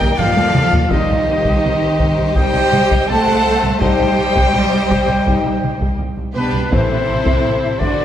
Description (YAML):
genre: cinematic, epic orchestral film score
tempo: 83 BPM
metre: 4/4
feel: straight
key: unclear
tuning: A4 = 443 Hz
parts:
  - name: dark symphonic violin section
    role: melody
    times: 0.0-8.0 s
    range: D4 to C5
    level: -23 LUFS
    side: left 4 dB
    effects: none
  - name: silver concert flute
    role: second line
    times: 0.0-8.0 s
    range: B4 to A5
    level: -25 LUFS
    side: left 2 dB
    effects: none
  - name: warm symphonic violin section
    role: second line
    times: 0.0-8.0 s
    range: G4 to F#5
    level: -27 LUFS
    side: left 2 dB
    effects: none
  - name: warm symphonic viola section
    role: accompaniment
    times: 0.0-8.0 s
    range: B3 to A4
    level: -24 LUFS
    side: equal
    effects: none
  - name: dark trumpet section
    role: stabs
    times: 0.0-8.0 s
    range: B4 to A5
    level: -19 LUFS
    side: right 1 dB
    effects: none
  - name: rich studio double bass section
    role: bass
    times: 0.0-8.0 s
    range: A1 to Eb2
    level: -22 LUFS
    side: right 2 dB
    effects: none
  - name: rich symphonic cello section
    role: bass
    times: 0.0-8.0 s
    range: B2 to A3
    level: -21 LUFS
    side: right 2 dB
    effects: none
  - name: taiko ensemble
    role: drums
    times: 0.0-8.0 s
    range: none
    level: -20 LUFS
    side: equal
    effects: none
  - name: mellow French horn section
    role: sustained chords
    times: 0.9-7.0 s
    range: E3 to Eb4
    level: -27 LUFS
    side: left 4 dB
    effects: none
room: wet concert hall reverb, RT60 2.5 s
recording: none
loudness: -13 LUFS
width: side -10 dB against mid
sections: 0.0-8.0 A section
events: drum fill 0.2-0.9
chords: 0.0 Eb; 0.9 Cm; 6.7 Am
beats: 0.19 | 0.91 1.63 2.36 3.08 | 3.81 4.54 5.26 5.99 | 6.71 7.44